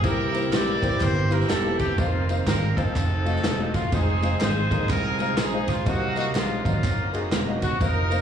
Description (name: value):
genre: uptempo gospel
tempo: 124 BPM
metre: 4/4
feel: swing 62% on 8ths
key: unclear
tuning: A4 = 440 Hz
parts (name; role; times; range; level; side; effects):
- clear horn section; melody; 0.0-8.2 s; Bb3 to D5; -27 LUFS; equal; slapback echo
- warm upright piano; accompaniment; 0.0-8.2 s; C3 to Eb5; -29 LUFS; left 2 dB; slapback echo
- bright tonewheel organ; sustained chords; 0.0-8.2 s; C3 to Bb4; -34 LUFS; right 3 dB; none
- fingered electric bass; bass; 0.0-8.2 s; E1 to C2; -26 LUFS; right 1 dB; none
- swinging big-band drum kit; drums; 0.0-8.2 s; kick drum, ride cymbal, snare drum; -27 LUFS; equal; none
- tambourine and handclaps; percussion; 0.0-8.2 s; none; -40 LUFS; right 1 dB; slapback echo
room: light reverb, small room ambience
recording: live gig heard through the venue's PA, club reverb, studio reverb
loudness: -21 LUFS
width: side -8 dB against mid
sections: 0.0-8.2 A section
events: none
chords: 0.0 C7; 2.0 F7sus4; 3.0 F7b9; 3.9 Fm7; 5.9 Cm7b5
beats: | 0.04 0.53 1.01 1.50 | 1.98 2.47 2.95 3.44 | 3.92 4.41 4.90 5.38 | 5.87 6.35 6.84 7.32 | 7.81